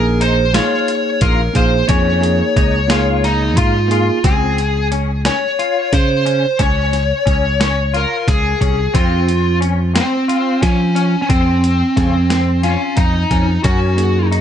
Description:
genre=progressive instrumental, band music in an uneven meter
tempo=179 BPM (eighths)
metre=7/8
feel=straight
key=unclear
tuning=A4 = 441 Hz
part: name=smooth overdriven lead guitar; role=melody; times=0.0-14.3 s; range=C4 to Db5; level=-17 LUFS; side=left 1 dB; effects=digital delay
part: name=bell-like tine electric piano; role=accompaniment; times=0.0-4.2, 14.0-14.4 s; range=Bb3 to Ab4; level=-20 LUFS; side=right 4 dB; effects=none
part: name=modern bright picked electric bass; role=bass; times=0.0-14.4 s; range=Bb1 to F3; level=-17 LUFS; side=equal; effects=none
part: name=clean electric guitar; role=arpeggios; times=0.2-14.4 s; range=Db3 to F4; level=-23 LUFS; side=left 5 dB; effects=ensemble chorus, digital delay
part: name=boom bap sampler-style drum kit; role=drums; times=0.2-14.4 s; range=hi-hat, kick drum, snare drum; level=-18 LUFS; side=equal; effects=none
room=light reverb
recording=nothing above 10.3 kHz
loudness=-13 LUFS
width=side -9 dB against mid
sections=0.0-4.2 A section; 4.2-14.4 B section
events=none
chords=0.0 Bbm7; 4.2 Dbmaj7; 8.9 F5; 13.6 Gb

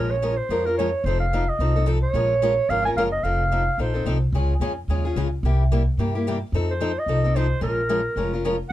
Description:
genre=acoustic string swing (jazz manouche)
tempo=219 BPM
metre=4/4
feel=swing 58% on 8ths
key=Bb minor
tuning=A4 = 439 Hz
part: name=breathy clarinet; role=melody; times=0.0-4.2, 6.7-8.7 s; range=Bb4 to Ab5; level=-24 LUFS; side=right 2 dB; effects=plate reverb
part: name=picked old ladder-braced acoustic guitar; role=accompaniment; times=0.0-8.6 s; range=C3 to Bb4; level=-26 LUFS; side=left 2 dB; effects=none
part: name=upright bass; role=bass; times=0.0-8.6 s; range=F1 to G2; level=-23 LUFS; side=equal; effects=none
room=light reverb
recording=dark, warm production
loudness=-20 LUFS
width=side -14 dB against mid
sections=0.0-8.7 A section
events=none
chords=0.0 Bbm7; 1.1 F7; 2.1 Bbm7; 3.2 F7; 4.3 Db; 5.4 C7; 6.5 F7; 7.6 Bbm7

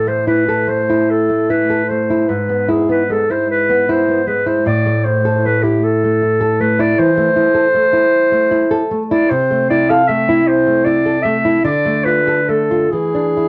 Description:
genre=romantic duo for clarinet and classical guitar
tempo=45-54 BPM (dotted quarters)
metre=12/8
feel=rubato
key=A minor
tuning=A4 = 440 Hz
part: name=warm clarinet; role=melody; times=0.0-13.5 s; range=G4 to F5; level=-18 LUFS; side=equal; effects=none
part: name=nylon-string guitar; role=accompaniment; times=0.0-13.5 s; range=G#2 to A4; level=-18 LUFS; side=equal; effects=none
room=moderate club reverb, RT60 0.6 s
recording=none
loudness=-15 LUFS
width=mono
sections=0.0-13.5 A section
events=none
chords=0.0 A5; 2.3 E/G#; 4.7 Am; 9.3 Am/C; 11.6 Dm; 12.9 E7

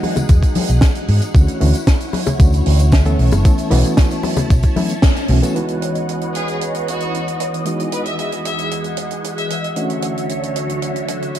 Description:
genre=nu-disco, nu disco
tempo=114 BPM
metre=4/4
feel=straight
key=C# minor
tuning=A4 = 436 Hz
part: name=reed electric piano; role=accompaniment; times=0.0-11.4 s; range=C#2 to A4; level=-24 LUFS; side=equal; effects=overdrive, medium tremolo, sidechain pumping, tape echo
part: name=string machine, full ensemble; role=sustained chords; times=0.0-11.4 s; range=D3 to A5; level=-24 LUFS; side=equal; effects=phaser, ensemble chorus, vintage 12-bit sampler grit, sidechain pumping
part: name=tight funk drum kit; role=drums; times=0.0-11.4 s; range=hi-hat, snare drum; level=-23 LUFS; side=right 2 dB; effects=none
part: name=congas, bongos and tambourine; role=percussion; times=0.0-5.5 s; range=none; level=-23 LUFS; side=left 3 dB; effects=none
part: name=hollow-body short-scale fingered electric bass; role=bass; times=0.3-5.4 s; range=F#1 to G#2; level=-14 LUFS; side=equal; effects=tube saturation
part: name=electronic kick drum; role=drums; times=0.3-5.1 s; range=none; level=-12 LUFS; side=equal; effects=overdrive
part: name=clear studio violin section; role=melody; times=6.4-9.6 s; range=F#4 to E5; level=-26 LUFS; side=left 1 dB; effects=tape echo
room=light reverb, small room ambience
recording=dark, warm production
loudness=-14 LUFS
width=side -11 dB against mid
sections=0.0-5.6 A section; 5.6-11.4 B section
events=band accent 5.0; filter sweep on string machine 5.6-11.4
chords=0.0 Emaj9; 1.3 Dmaj9; 3.2 B9sus4; 5.6 C#m11; 7.7 Emaj9; 9.8 Dmaj9

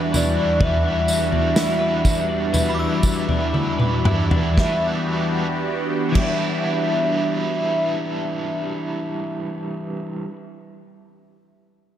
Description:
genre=dream pop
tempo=57-64 BPM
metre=4/4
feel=straight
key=E minor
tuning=A4 = 439 Hz
part: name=overdriven electric guitar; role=accompaniment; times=0.0-10.4 s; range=E3 to B4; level=-29 LUFS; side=right 3 dB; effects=tremolo, wide subtle chorus
part: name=phased analog pad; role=sustained chords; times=0.0-9.0 s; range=E2 to G4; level=-24 LUFS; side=right 1 dB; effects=phaser, chorus
part: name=twelve-string electric guitar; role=arpeggios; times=0.0-10.3 s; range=E3 to B4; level=-27 LUFS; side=left 4 dB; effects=lush chorus, diffuse ambient delay
part: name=loose indie drum kit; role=drums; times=0.1-6.4 s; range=crash cymbal, kick drum, snare drum, tambourine, toms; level=-21 LUFS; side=equal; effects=none
part: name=warbly nostalgic lead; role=melody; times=0.2-9.6 s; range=D5 to E5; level=-25 LUFS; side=equal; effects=chorus, tremolo, diffuse ambient delay
part: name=synth chime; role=texture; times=2.7-9.0 s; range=B5 to E6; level=-34 LUFS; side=equal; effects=ensemble chorus, tremolo, diffuse ambient delay
room=moderate lush hall reverb, RT60 2.8 s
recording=dreamy mix soaked in reverb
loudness=-19 LUFS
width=side -10 dB against mid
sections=0.0-4.6 A section; 4.6-8.8 B section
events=slowing down 0.0-4.6; drum fill 3.5-4.6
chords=0.0 Em7

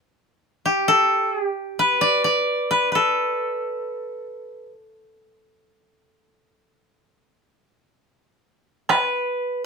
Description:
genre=japanese traditional, Japanese chamber music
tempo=57-66 BPM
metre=4/4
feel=rubato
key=unclear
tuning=A4 = 440 Hz
part: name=koto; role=melody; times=0.7-9.6 s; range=G4 to D5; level=-19 LUFS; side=equal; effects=none
part: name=taiko ensemble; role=percussion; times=8.9-9.1 s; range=none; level=-21 LUFS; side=right 7 dB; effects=none
room=little or no reverb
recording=close, detailed microphones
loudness=-19 LUFS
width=side -4 dB against mid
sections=0.0-8.9 A section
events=none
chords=none

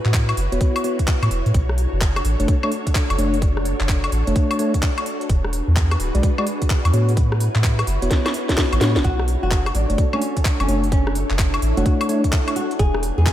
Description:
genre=UK garage, two-step garage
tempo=128 BPM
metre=4/4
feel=swing 64% on 16ths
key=B dorian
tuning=A4 = 439 Hz
part: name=soft string machine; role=sustained chords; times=0.0-13.3 s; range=B3 to C#5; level=-28 LUFS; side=equal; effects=ensemble chorus, sidechain pumping
part: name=soft dub sub bass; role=bass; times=0.1-13.3 s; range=D1 to A2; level=-20 LUFS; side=equal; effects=none
part: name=electronic kick drum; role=drums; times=0.1-13.3 s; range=none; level=-19 LUFS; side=equal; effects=none
part: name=garage drum kit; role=drums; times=0.1-13.3 s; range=handclaps, hi-hat, rim click, snare drum, woodblock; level=-25 LUFS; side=left 1 dB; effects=none
part: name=mellow tine electric piano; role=stabs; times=0.5-12.2 s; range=G#3 to D5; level=-26 LUFS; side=left 1 dB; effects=tape echo
part: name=flamenco guitar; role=melody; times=9.0-13.3 s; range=C#4 to G#4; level=-27 LUFS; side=equal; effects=tape echo
room=light reverb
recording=none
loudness=-17 LUFS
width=side -12 dB against mid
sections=0.0-13.3 A section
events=drum fill 8.1-9.0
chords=0.0 A69; 1.5 Bm9 (rootless); 5.3 E9; 6.9 A69; 9.0 Bm9 (rootless); 12.8 E9

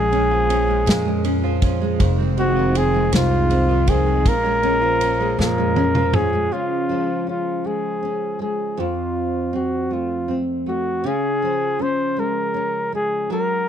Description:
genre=six-eight pop ballad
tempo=53 BPM (dotted quarters)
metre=6/8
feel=straight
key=unclear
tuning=A4 = 440 Hz
part: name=warm flugelhorn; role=melody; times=0.0-13.7 s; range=F4 to C5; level=-21 LUFS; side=equal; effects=none
part: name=nylon-string guitar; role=accompaniment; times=0.0-13.7 s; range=F2 to Bb4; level=-23 LUFS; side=left 1 dB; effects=double-tracked left and right
part: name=direct-recorded clean electric guitar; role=arpeggios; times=0.0-7.1 s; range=Eb3 to F4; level=-29 LUFS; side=right 14 dB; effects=tremolo
part: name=upright bass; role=bass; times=0.0-6.5 s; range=F1 to F2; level=-22 LUFS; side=equal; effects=none
part: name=natural country drum kit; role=drums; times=0.1-6.3 s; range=kick drum, ride cymbal, snare drum, toms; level=-20 LUFS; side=equal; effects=none
room=studio reverb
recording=dry, close 1970s-style studio recording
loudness=-18 LUFS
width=side -9 dB against mid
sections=0.0-6.5 A section; 6.5-13.7 B section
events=drum fill 5.4-6.5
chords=0.0 Bbm7; 2.0 Fm7; 4.3 Bbm7; 6.5 Db; 8.8 F; 11.0 Db

